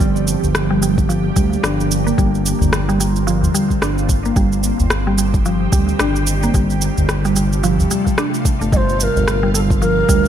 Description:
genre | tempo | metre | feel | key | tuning
organic downtempo | 110 BPM | 4/4 | swing 59% on 16ths | G minor | A4 = 440 Hz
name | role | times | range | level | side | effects
ethereal airy pad | sustained chords | 0.0-10.3 s | C3 to G4 | -23 LUFS | right 2 dB | ensemble chorus, built-in reverb, phaser, sidechain pumping
mallet-like synth pluck | arpeggios | 0.0-10.3 s | F3 to D4 | -20 LUFS | right 1 dB | chorus, cassette tape, digital delay
smooth gliding synth bass | bass | 0.0-10.3 s | G1 to D2 | -19 LUFS | equal | tube saturation
electronic kick drum | drums | 0.0-10.2 s | none | -17 LUFS | equal | overdrive, studio reverb
electronic shaker and rim click | drums | 0.0-10.3 s | none | -23 LUFS | right 1 dB | studio reverb
udu | percussion | 0.4-9.2 s | none | -20 LUFS | equal | none
mellow bass bansuri | melody | 8.7-10.3 s | A4 to Eb5 | -18 LUFS | right 1 dB | digital delay
room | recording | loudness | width
light reverb, small room ambience | none | -14 LUFS | side -10 dB against mid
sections
0.0-10.3 A section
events
none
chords
0.0 Gm7; 2.2 Bbadd9/G; 4.4 Cm/G; 6.5 Fadd9/G; 8.7 Gm7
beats
| 0.00 0.54 1.09 1.64 | 2.18 2.73 3.27 3.82 | 4.36 4.91 5.45 6.00 | 6.54 7.09 7.63 8.18 | 8.73 9.27 9.82

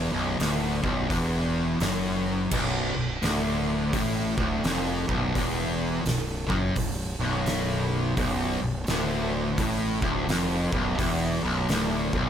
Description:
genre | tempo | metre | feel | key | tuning
stoner and doom metal | 85 BPM | 4/4 | swing 63% on 8ths | B minor | A4 = 440 Hz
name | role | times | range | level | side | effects
fuzz guitar | riff | 0.0-12.3 s | B1 to A2 | -26 LUFS | equal | distortion
fuzz fingered electric bass | bass | 0.0-12.3 s | B0 to A1 | -32 LUFS | equal | overdrive
oversized low-tuned drum kit | drums | 0.4-12.3 s | crash cymbal, hi-hat, kick drum, snare drum | -31 LUFS | equal | none
room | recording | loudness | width
small room ambience | none | -24 LUFS | side -9 dB against mid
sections
0.0-12.3 A section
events
none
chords
0.0 Bm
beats
0.39 1.10 1.81 | 2.52 3.22 3.93 4.64 | 5.34 6.05 6.76 7.46 | 8.17 8.87 9.58 10.28 | 10.99 11.69

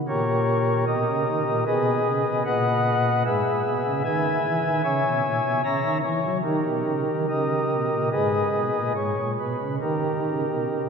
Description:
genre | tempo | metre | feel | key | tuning
classical, chorale-style piece for pipe organ | 67-76 BPM | 4/4 | rubato | G# minor | A4 = 440 Hz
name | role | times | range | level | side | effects
pipe organ, flutes | solo | 0.1-10.9 s | G#2 to A#5 | -21 LUFS | equal | none
room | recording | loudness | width
wet cathedral reverb, RT60 4.3 s | none | -21 LUFS | side -6 dB against mid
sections
0.0-10.9 A section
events
none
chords
0.1 D#7/A#; 1.7 G#m/B; 3.3 E/G#; 4.8 A#m7b5; 6.4 D#; 8.1 G#m; 9.8 D#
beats
| 0.08 0.87 1.66 2.45 | 3.25 4.04 4.84 5.64 | 6.44 7.28 8.11 8.95 | 9.81 10.70

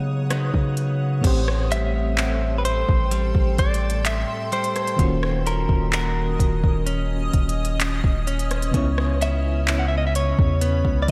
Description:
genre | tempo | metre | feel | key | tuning
contemporary R&B | 64 BPM | 4/4 | straight | unclear | A4 = 440 Hz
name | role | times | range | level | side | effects
FM electric piano with tremolo | accompaniment | 0.0-11.1 s | A2 to C#5 | -32 LUFS | equal | none
granular cloud pad | sustained chords | 0.0-11.1 s | C#4 to D#6 | -36 LUFS | equal | built-in reverb, analog chorus, sidechain pumping
direct-recorded clean electric guitar | arpeggios | 0.0-11.1 s | A2 to F#4 | -33 LUFS | equal | none
long sustained 808-style bass | bass | 0.0-11.1 s | D#1 to C#3 | -26 LUFS | equal | none
smooth R&B drum kit | drums | 0.3-11.1 s | crash cymbal, handclaps, hi-hat, kick drum, rim click | -26 LUFS | equal | none
direct-recorded clean electric guitar | melody | 1.7-11.1 s | A#4 to F#5 | -29 LUFS | equal | spring reverb
room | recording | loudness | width
light reverb | none | -22 LUFS | mono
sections
0.0-1.2 A section; 1.2-11.1 B section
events
none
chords
0.0 C#9sus4; 1.2 Am7; 5.0 D#m7; 8.7 C#m7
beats
0.30 | 1.24 2.18 3.12 4.05 | 4.99 5.93 6.87 7.80 | 8.74 9.68 10.62

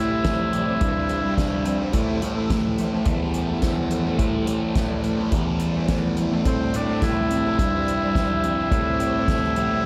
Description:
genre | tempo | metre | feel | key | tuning
psychedelic rock | 106 BPM | 4/4 | straight | unclear | A4 = 441 Hz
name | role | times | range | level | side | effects
combo organ | melody | 0.0-1.3, 6.5-9.9 s | C4 to E4 | -27 LUFS | equal | analog delay
phased string machine | sustained chords | 0.0-9.9 s | G3 to E5 | -35 LUFS | equal | ensemble chorus, phaser
thick fuzz guitar | riff | 0.0-9.9 s | A2 to C4 | -31 LUFS | equal | distortion, phaser, analog delay
fuzz picked electric bass | bass | 0.0-9.8 s | E2 to A2 | -27 LUFS | equal | overdrive
soft-mallet drum kit | drums | 0.2-9.7 s | hi-hat, kick drum, snare drum | -28 LUFS | equal | analog delay
room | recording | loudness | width
moderate spring reverb, RT60 2.1 s | echo-heavy mix | -22 LUFS | mono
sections
0.0-9.9 A section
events
none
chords
0.0 Cadd9; 1.9 Am7; 6.5 Cadd9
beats
0.25 0.82 1.38 | 1.95 2.51 3.08 3.64 | 4.21 4.77 5.34 5.90 | 6.47 7.03 7.59 8.16 | 8.72 9.29 9.85

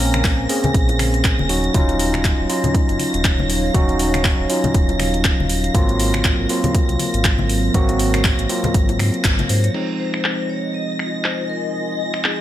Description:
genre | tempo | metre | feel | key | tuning
deep house | 120 BPM | 4/4 | swing 58% on 16ths | Eb dorian | A4 = 437 Hz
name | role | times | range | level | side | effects
dark analog pad | sustained chords | 0.0-12.4 s | Gb3 to Ab5 | -29 LUFS | right 2 dB | wide subtle chorus, sidechain pumping
overdriven tine electric piano | stabs | 0.0-12.4 s | F3 to Bb4 | -22 LUFS | equal | sidechain pumping, tape echo
sub bass with octave | bass | 0.0-9.7 s | Eb1 to Ab2 | -22 LUFS | equal | sidechain pumping
string machine, violins | texture | 0.0-12.4 s | Bb6 | -28 LUFS | equal | ensemble chorus
deep house drum kit | drums | 0.1-12.4 s | crash cymbal, finger snaps, handclaps, hi-hat | -23 LUFS | equal | low-pass filter on hats, studio reverb, low-pass filter on snare, low-pass filter on cymbals
congas and bongos | percussion | 0.1-9.5 s | none | -26 LUFS | left 2 dB | none
electronic kick drum | drums | 0.2-9.4 s | none | -18 LUFS | equal | studio reverb
vibraphone with medium mallets | melody | 9.5-12.4 s | Ab4 to Eb5 | -28 LUFS | left 4 dB | ping-pong delay
granular cloud pad | texture | 10.7-12.4 s | F4 to Ab5 | -27 LUFS | left 4 dB | built-in reverb, sidechain pumping
room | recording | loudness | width
light reverb | none | -16 LUFS | side -12 dB against mid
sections
0.0-9.7 A section; 9.7-12.4 B section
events
band accent 9.2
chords
0.0 Bbm9; 1.5 Ebm9; 5.7 Ab13; 9.7 Fm7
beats
0.24 0.74 1.25 | 1.75 2.25 2.75 3.25 | 3.75 4.25 4.75 5.25 | 5.75 6.25 6.75 7.25 | 7.75 8.24 8.74 9.24 | 9.74 10.24 10.74 11.24 | 11.74 12.24

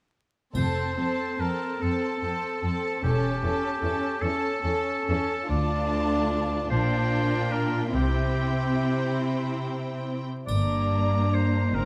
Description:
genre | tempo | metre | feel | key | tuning
classical, slow romantic movement for symphony orchestra | 48 BPM (dotted quarters) | 6/8 | uneven beats, rubato | F major | A4 = 440 Hz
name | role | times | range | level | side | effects
rich studio violin section | second line | 0.5-11.9 s | D4 to A4 | -36 LUFS | equal | none
rich studio violin section | melody | 0.6-11.9 s | G5 to Bb5 | -43 LUFS | equal | none
warm oboe | second line | 0.6-11.9 s | G4 to D5 | -32 LUFS | equal | none
clear chamber viola section | accompaniment | 0.6-11.9 s | Bb3 to D4 | -33 LUFS | equal | none
clear studio cello section | bass | 0.6-11.9 s | D2 to C3 | -31 LUFS | equal | none
rich studio double bass section | bass | 0.6-11.9 s | E1 to D2 | -31 LUFS | equal | none
triangle | percussion | 0.6-2.2, 10.5-11.9 s | none | -48 LUFS | equal | none
room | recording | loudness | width
light reverb | close, detailed microphones, vinyl crackle | -26 LUFS | mono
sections
0.6-11.9 A section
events
none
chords
0.6 F; 3.0 A7/E; 5.5 Dm; 6.7 Gm7/Bb; 7.9 C; 10.5 Gmadd11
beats
| 0.55 1.81 | 3.03 4.21 | 5.50 6.70 | 7.94 9.20 | 10.49 11.74

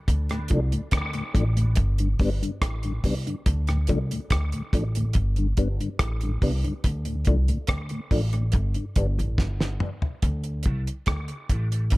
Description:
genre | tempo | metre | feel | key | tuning
dub reggae | 71 BPM | 4/4 | straight | D dorian | A4 = 441 Hz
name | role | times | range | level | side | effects
upright bass | bass | 0.1-12.0 s | G1 to D2 | -25 LUFS | equal | none
damped 70s drum kit | drums | 0.1-12.0 s | hi-hat, kick drum, rim click, snare drum, toms | -25 LUFS | equal | none
mellow tonewheel organ | accompaniment | 0.3-11.8 s | D2 to D4 | -30 LUFS | left 2 dB | chorus vibrato, slow rotary speaker, high-pass filter
mellow electric guitar | accompaniment | 10.6-11.8 s | F3 to D4 | -49 LUFS | right 2 dB | ensemble chorus, high-pass filter, dub echo
room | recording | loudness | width
studio ambience | none | -23 LUFS | side -21 dB against mid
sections
0.0-10.2 A section; 10.2-12.0 B section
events
break 0.1-10.2; filter sweep 6.8-12.0; drum fill 9.4-10.2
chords
0.1 Dm; 1.8 G; 3.5 Dm; 5.2 G; 6.8 Dm; 8.5 G; 10.2 Dm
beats
| 0.07 0.92 1.76 2.61 | 3.46 4.30 5.15 6.00 | 6.84 7.69 8.54 9.38 | 10.23 11.07 11.92

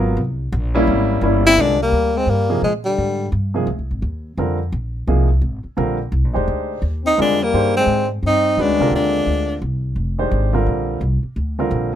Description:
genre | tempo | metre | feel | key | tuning
modal jazz | 172 BPM | 4/4 | swing 62% on 8ths | F dorian | A4 = 440 Hz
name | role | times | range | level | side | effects
warm baby grand piano | accompaniment | 0.0-11.9 s | C3 to C5 | -20 LUFS | right 2 dB | none
upright bass | bass | 0.0-12.0 s | F1 to Bb2 | -20 LUFS | equal | none
clear tenor saxophone | melody | 1.5-3.3, 7.1-9.6 s | G3 to E4 | -17 LUFS | equal | none
warm trombone | second line | 1.5-3.3, 7.0-9.6 s | D3 to C4 | -24 LUFS | left 8 dB | none
room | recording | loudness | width
light reverb | none | -16 LUFS | side -10 dB against mid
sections
0.0-1.6 A section; 1.6-12.0 B section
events
none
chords
0.2 C7b9; 1.6 Fm69; 4.4 Bbadd9; 7.2 Fm69; 10.0 Bbadd9/F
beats
| 0.17 0.52 0.87 1.22 | 1.57 1.92 2.27 2.62 | 2.97 3.32 3.67 4.02 | 4.37 4.72 5.07 5.42 | 5.77 6.12 6.47 6.82 | 7.17 7.52 7.87 8.22 | 8.57 8.92 9.27 9.62 | 9.97 10.32 10.67 11.02 | 11.37 11.72

